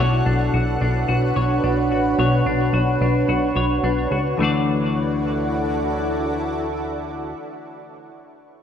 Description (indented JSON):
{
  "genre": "dream pop",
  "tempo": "109 BPM",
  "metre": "4/4",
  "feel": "straight",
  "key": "D major",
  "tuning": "A4 = 441 Hz",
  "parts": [
    { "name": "shimmering ambient pad", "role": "sustained chords", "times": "0.0-7.4 s", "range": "D4 to F#5", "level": "-23 LUFS", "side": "right 1 dB", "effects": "chorus, built-in reverb" },
    { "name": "semi-hollow electric guitar", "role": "arpeggios", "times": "0.0-8.1 s", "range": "B2 to D5", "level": "-23 LUFS", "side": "left 4 dB", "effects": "analog chorus, ping-pong delay" },
    { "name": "plucky analog bass", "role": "bass", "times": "0.0-7.3 s", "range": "A1 to D2", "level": "-24 LUFS", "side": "right 1 dB", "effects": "none" }
  ],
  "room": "moderate plate reverb, RT60 2.1 s",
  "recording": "none",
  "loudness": "-18 LUFS",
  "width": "side -8 dB against mid",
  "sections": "0.0-4.4 A section; 4.4-6.6 B section",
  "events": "none",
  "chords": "0.0 Bmadd9; 4.4 Dadd9"
}